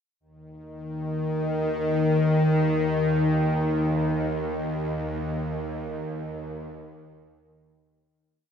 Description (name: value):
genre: ambient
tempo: free time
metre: none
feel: none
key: unclear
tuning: A4 = 440 Hz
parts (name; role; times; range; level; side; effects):
- bowed-like drone; solo; 0.8-8.4 s; Eb2 to Eb3; -24 LUFS; left 1 dB; built-in reverb, ping-pong delay
room: wet lush hall reverb, RT60 2.8 s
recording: dreamy mix soaked in reverb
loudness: -23 LUFS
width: side -7 dB against mid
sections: 0.2-8.3 A section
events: fade-out 4.3-8.3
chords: none